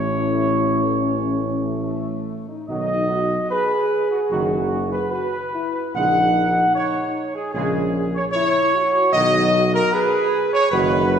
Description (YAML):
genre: classical, ceremonial fanfare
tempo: 74 BPM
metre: 4/4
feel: straight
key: B major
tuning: A4 = 440 Hz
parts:
  - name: dark trumpet section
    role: melody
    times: 0.0-11.2 s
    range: F#4 to F#5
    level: -20 LUFS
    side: right 1 dB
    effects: none
  - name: mellow French horn section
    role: sustained chords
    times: 0.0-11.2 s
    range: A3 to G#4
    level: -24 LUFS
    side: left 2 dB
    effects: none
  - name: warm trombone section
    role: sustained chords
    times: 0.0-11.0 s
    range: C#3 to A3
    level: -30 LUFS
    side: right 1 dB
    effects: none
  - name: mellow tuba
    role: bass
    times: 0.0-11.2 s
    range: F#1 to B1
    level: -24 LUFS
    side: right 1 dB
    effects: none
room: wet scoring stage reverb, RT60 2.0 s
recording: recorded in a church or concert hall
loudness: -18 LUFS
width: side -7 dB against mid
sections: 0.0-11.2 A section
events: none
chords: 0.0 A; 2.7 B; 6.0 F#add9/A#; 9.1 B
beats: 0.20 1.02 1.85 | 2.69 3.51 4.31 5.12 | 5.95 6.76 7.55 8.34 | 9.14 9.93 10.73